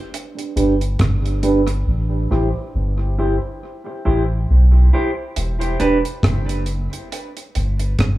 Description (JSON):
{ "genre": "dub reggae", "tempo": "69 BPM", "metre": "4/4", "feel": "swing 56% on 16ths", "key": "E minor", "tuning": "A4 = 442 Hz", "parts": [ { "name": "deep reggae drum kit", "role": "drums", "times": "0.1-8.2 s", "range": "hi-hat, kick drum, rim click", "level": "-22 LUFS", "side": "right 1 dB", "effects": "tape echo" }, { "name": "clean electric guitar", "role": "accompaniment", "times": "0.4-6.0 s", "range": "D4 to C5", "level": "-22 LUFS", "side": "right 2 dB", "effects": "low-pass filter, tape echo" }, { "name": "soft dub sub bass", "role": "bass", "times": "0.6-8.2 s", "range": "E1 to B1", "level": "-17 LUFS", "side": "equal", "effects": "none" } ], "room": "studio reverb", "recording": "echo-heavy mix, small room reverb", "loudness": "-16 LUFS", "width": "side -16 dB against mid", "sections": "0.0-8.2 A section", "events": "filter sweep on clean electric guitar 0.0-8.2; part muted 1.9-5.4; break 5.4-8.2", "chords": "0.0 Em7 (rootless); 1.9 Am7; 5.4 Em", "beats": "0.12 0.99 | 1.87 2.74 3.62 4.49 | 5.36 6.24 7.11 7.99" }